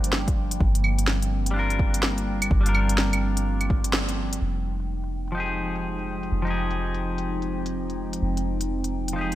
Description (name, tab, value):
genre	future garage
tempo	126 BPM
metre	4/4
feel	swing 62% on 16ths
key	F dorian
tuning	A4 = 439 Hz
part	clean electric guitar	accompaniment	0.0-9.3 s	F3 to Bb4	-30 LUFS	left 2 dB	sidechain pumping, tape echo
part	warbly tape-like pad	sustained chords	0.0-9.3 s	F3 to G5	-31 LUFS	right 1 dB	chorus, built-in reverb, sidechain pumping
part	soft 808-style bass	bass	0.0-9.3 s	F1 to G1	-26 LUFS	equal	sidechain pumping
part	organic electronic drum kit	drums	0.0-9.3 s	claves, hi-hat, snare drum	-27 LUFS	equal	low-pass filter on hats, low-pass filter on snare, low-pass filter on perc, low-pass filter on room
part	electronic kick drum	drums	0.3-3.8 s	none	-24 LUFS	equal	overdrive
room	light reverb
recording	none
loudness	-23 LUFS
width	side -14 dB against mid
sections	0.0-4.4 A section; 4.4-9.3 B section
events	kick drops out 3.9-4.4; band accent 3.9; filter sweep on drum 4.4-9.3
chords	0.0 Gm7; 4.4 Fm9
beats	0.13 | 0.60 1.08 1.55 2.03 | 2.51 2.98 3.46 3.94 | 4.41 4.89 5.37 5.84 | 6.32 6.79 7.27 7.75 | 8.22 8.70 9.17